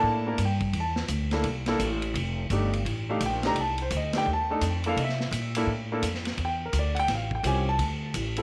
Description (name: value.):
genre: jazz, small-group swing and bop.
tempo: 170 BPM.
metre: 4/4.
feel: swing 64% on 8ths.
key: C mixolydian.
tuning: A4 = 439 Hz.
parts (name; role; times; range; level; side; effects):
clear concert grand piano; accompaniment; 0.0-8.4 s; A3 to Bb5; -30 LUFS; equal; none.
upright bass; bass; 0.0-8.4 s; F1 to C3; -32 LUFS; equal; none.
vintage drum kit; drums; 0.0-8.4 s; hi-hat, kick drum, ride cymbal, snare drum; -36 LUFS; equal; none.
room: light reverb, small room reverb.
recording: none.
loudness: -28 LUFS.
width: mono.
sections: 0.0-8.4 A section.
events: none.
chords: 0.0 C13; 2.2 F13; 5.0 C13; 6.4 Em7b5; 7.1 A7alt; 7.8 D5.